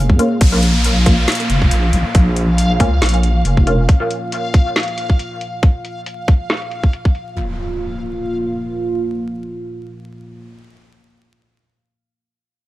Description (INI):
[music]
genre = deep dubstep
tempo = 138 BPM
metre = 4/4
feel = swing 55% on 16ths, half-time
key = Bb minor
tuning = A4 = 441 Hz
[part]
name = dark analog pad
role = sustained chords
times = 0.0-10.5 s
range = Bb3 to Ab4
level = -26 LUFS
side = right 2 dB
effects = chorus, phaser
[part]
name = deep soft wobble bass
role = bass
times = 0.0-3.9 s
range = F1 to Eb2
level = -14 LUFS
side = equal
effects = chorus
[part]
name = backwards swelling texture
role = texture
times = 0.0-7.4 s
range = F5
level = -26 LUFS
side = left 1 dB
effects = built-in reverb
[part]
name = electronic kick drum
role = drums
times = 0.1-7.1 s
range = none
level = -12 LUFS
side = equal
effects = none
[part]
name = filtered dub chord stab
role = stabs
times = 0.2-4.1 s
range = Bb3 to F4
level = -22 LUFS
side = equal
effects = phaser, lush chorus, dub echo
[part]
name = garage drum kit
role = drums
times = 0.2-7.2 s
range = hi-hat, snare drum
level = -22 LUFS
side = equal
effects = low-pass filter on snare, low-pass filter on hats, low-pass filter on perc
[part]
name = downlifter and impact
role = sound effects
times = 0.4-3.9, 7.4-10.5 s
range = none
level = -24 LUFS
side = equal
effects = none
[sound]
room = light reverb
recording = vinyl crackle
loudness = -14 LUFS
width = side -16 dB against mid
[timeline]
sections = 0.4-7.4 A section; 7.4-10.8 B section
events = filter sweep on analog synth pad 0.4-7.4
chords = 0.4 Bbm; 7.4 Bb5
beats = | 0.41 0.84 1.28 1.71 | 2.15 2.58 3.02 3.45 | 3.89 4.32 4.76 5.19 | 5.63 6.06 6.50 6.93 | 7.37 7.80 8.23 8.67 | 9.11 9.54 9.97 10.41